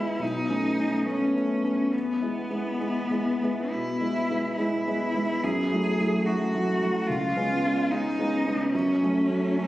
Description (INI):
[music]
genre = classical, romantic duo for cello and grand piano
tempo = 71 BPM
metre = 4/4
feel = rubato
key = E major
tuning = A4 = 440 Hz
[part]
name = clear cello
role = melody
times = 0.0-9.7 s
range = B3 to G#4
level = -28 LUFS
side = left 1 dB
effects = none
[part]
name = clear grand piano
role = accompaniment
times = 0.0-9.7 s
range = B1 to E4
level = -26 LUFS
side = equal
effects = none
[sound]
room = wet concert hall reverb, RT60 2.3 s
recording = recorded on a phone in the room, studio reverb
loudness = -24 LUFS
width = side -15 dB against mid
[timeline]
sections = 0.0-9.7 A section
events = none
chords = 0.2 B9; 1.9 E; 5.4 F#m7; 7.1 C#7; 8.7 F#m